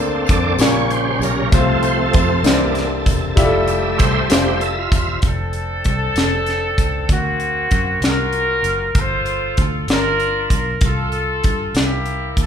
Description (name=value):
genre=slow gospel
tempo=64 BPM (dotted quarters)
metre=6/8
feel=straight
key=F major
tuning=A4 = 440 Hz
part: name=warm concert grand piano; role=accompaniment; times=0.0-5.3 s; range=Bb2 to C5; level=-20 LUFS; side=left 3 dB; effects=none
part: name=bright tonewheel organ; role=sustained chords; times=0.0-5.2 s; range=Db3 to F5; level=-20 LUFS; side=right 2 dB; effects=slow rotary speaker, overdrive, chorus vibrato
part: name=warm studio string section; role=sustained chords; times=0.0-5.2 s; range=C5 to C6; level=-31 LUFS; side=left 2 dB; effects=none
part: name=fingered electric bass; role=bass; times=0.0-12.5 s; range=E1 to G2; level=-23 LUFS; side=equal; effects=none
part: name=crisp fusion drum kit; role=drums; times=0.3-12.5 s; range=hi-hat, kick drum, snare drum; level=-18 LUFS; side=equal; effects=none
part: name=tambourine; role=percussion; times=0.3-5.2 s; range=none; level=-34 LUFS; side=left 4 dB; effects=none
part: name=warm horn section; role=melody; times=5.3-12.5 s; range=A#3 to C5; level=-20 LUFS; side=equal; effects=none
room=moderate large studio reverb, RT60 1.1 s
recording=band playing live in one room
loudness=-15 LUFS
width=side -8 dB against mid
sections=0.0-5.2 A section; 5.2-12.5 B section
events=tonewheel organ solo 0.0-5.2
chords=0.0 Bbmaj9/D; 0.6 Bbm6; 1.5 F/C; 2.5 C9; 3.4 Fmaj9; 5.2 F6; 7.1 D7alt; 9.0 Gm9; 10.8 Csus4; 11.8 C7